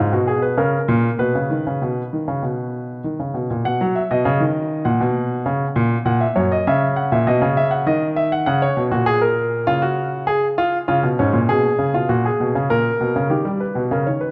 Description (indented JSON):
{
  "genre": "classical, baroque-style two-part invention for grand piano",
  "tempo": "99 BPM",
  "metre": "4/4",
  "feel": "straight",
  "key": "B major",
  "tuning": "A4 = 440 Hz",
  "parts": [
    { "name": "warm grand piano", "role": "solo", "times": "0.0-14.3 s", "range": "F#2 to F#5", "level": "-19 LUFS", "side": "equal", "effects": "none" }
  ],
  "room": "wet recital hall reverb, RT60 1.7 s",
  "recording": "dark, warm production",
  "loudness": "-19 LUFS",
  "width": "mono",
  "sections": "0.0-3.7 A section; 3.7-13.3 B section; 13.3-14.3 A section",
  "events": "none",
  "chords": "0.0 Fdim/Ab; 0.6 A#m; 1.2 B; 4.9 F#/A#; 6.1 F#7; 7.3 B (rootless); 8.5 F#; 9.7 C#; 10.9 C#7; 12.1 F#/A# (rootless); 13.3 D#7"
}